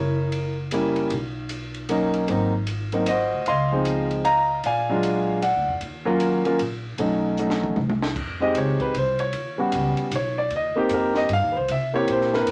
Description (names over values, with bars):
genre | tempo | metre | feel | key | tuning
jazz piano trio | 153 BPM | 3/4 | swing 64% on 8ths | F minor from 8.2 s | A4 = 440 Hz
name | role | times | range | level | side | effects
warm concert grand piano | melody | 0.0-12.5 s | F3 to C6 | -24 LUFS | equal | none
upright bass | bass | 0.0-12.5 s | Gb1 to C3 | -32 LUFS | equal | none
compact cocktail drum kit | drums | 0.3-12.5 s | crash cymbal, hi-hat, kick drum, ride cymbal, snare drum, toms | -36 LUFS | equal | none
room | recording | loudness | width
moderate studio reverb, RT60 0.5 s | none | -23 LUFS | mono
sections
0.0-8.2 A section; 8.2-12.5 B section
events
drum fill 7.4-8.2; grand piano solo 8.2-12.5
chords
0.0 Gb7b9; 1.1 Bmaj9; 2.3 Ab7; 3.5 Dbmaj9; 4.6 Bb7b13; 5.8 Ebm9; 7.0 B9; 7.8 N.C.; 8.2 Fm9; 9.3 Eb7alt; 10.5 Cm7; 11.7 C7